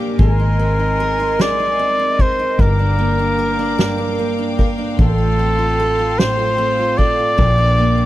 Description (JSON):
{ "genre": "six-eight pop ballad", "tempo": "50 BPM (dotted quarters)", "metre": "6/8", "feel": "straight", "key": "unclear", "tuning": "A4 = 440 Hz", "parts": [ { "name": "picked steel-string acoustic guitar", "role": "accompaniment", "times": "0.0-8.1 s", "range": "G2 to Bb4", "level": "-21 LUFS", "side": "right 2 dB", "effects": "none" }, { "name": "warm studio string section", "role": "sustained chords", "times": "0.0-8.1 s", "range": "Eb4 to D6", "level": "-28 LUFS", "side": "left 3 dB", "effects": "none" }, { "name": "vintage muted fingered electric bass", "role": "bass", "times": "0.0-8.1 s", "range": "G1 to Bb1", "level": "-18 LUFS", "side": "equal", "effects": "none" }, { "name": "clear flugelhorn", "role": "melody", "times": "0.2-8.1 s", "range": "A4 to D5", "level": "-18 LUFS", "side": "equal", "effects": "none" }, { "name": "soft-mallet drum kit", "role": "drums", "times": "0.2-8.0 s", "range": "kick drum, ride cymbal, snare drum", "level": "-19 LUFS", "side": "equal", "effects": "none" } ], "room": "little or no reverb", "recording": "dry, close 1970s-style studio recording", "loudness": "-14 LUFS", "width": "side -15 dB against mid", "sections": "0.0-8.1 A section", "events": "drum fill 0.0", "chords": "0.2 Abadd9; 2.6 Gm7; 5.0 Fadd9/A; 7.4 Bb6" }